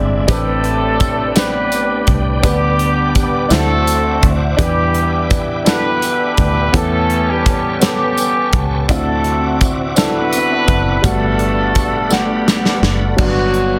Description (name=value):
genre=slow gospel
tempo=56 BPM (dotted quarters)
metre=6/8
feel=straight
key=G major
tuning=A4 = 440 Hz
part: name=clear horn section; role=melody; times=0.0-13.8 s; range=F#3 to B4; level=-21 LUFS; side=equal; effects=none
part: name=clear baby grand piano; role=accompaniment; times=0.0-13.8 s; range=G2 to F#5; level=-22 LUFS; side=equal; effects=none
part: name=bright tonewheel organ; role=sustained chords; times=0.0-13.8 s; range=G#3 to D6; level=-28 LUFS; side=equal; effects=slow rotary speaker, chorus vibrato
part: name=fingered electric bass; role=bass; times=0.0-13.8 s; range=F#1 to E2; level=-22 LUFS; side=equal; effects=none
part: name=modern studio drum kit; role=drums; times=0.3-13.7 s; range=crash cymbal, hi-hat, kick drum, snare drum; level=-20 LUFS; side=equal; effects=none
part: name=tambourine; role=percussion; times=0.3-12.8 s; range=none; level=-30 LUFS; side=equal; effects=none
part: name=breathy alto saxophone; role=melody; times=13.2-13.8 s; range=F#3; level=-21 LUFS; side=equal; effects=plate reverb
room=moderate large studio reverb, RT60 0.8 s, small room reverb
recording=dense, heavily limited modern master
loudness=-15 LUFS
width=mono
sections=0.0-13.2 A section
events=drum fill 12.1-13.2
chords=0.3 Am11; 2.4 G/D; 3.5 D9; 4.6 Em7; 6.7 A9/E; 8.9 D9; 11.0 Gmaj9; 13.2 Gmaj7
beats=| 0.29 1.36 | 2.44 3.51 | 4.59 5.66 | 6.74 7.81 | 8.88 9.96 | 11.04 12.11 | 13.19